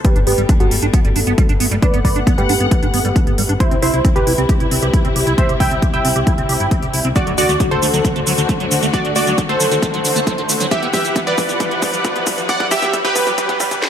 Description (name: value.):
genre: uplifting trance.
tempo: 135 BPM.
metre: 4/4.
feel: straight.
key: G major.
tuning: A4 = 440 Hz.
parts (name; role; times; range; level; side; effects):
supersaw stab; melody; 0.0-13.8 s; E4 to G5; -19 LUFS; right 1 dB; sidechain pumping, low-pass filter, dub echo.
dark studio string section; sustained chords; 0.0-13.8 s; E3 to F#5; -24 LUFS; left 4 dB; sidechain pumping.
liquid acid bass; arpeggios; 0.0-13.8 s; D3 to G4; -24 LUFS; right 3 dB; phaser, ensemble chorus, sidechain pumping, dub echo.
electronic kick drum; drums; 0.0-13.8 s; none; -17 LUFS; equal; overdrive.
techno drum kit; drums; 0.0-13.9 s; hi-hat, shaker, snare drum; -22 LUFS; equal; overdrive.
riser; sound effects; 4.0-13.9 s; none; -29 LUFS; equal; none.
solid FM bass; bass; 0.2-13.8 s; G1 to E2; -22 LUFS; equal; tube saturation, sidechain pumping.
room: light reverb, digital ambience.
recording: high-pass filter.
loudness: -13 LUFS.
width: side -9 dB against mid.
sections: 0.0-13.9 A section.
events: build-up 0.0-13.9; filter sweep on supersaw synth 0.0-13.9; filter sweep 0.0-13.9; drum fill 7.2-13.8.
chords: 0.0 Gadd9; 3.6 C; 7.2 D; 10.7 Emadd9.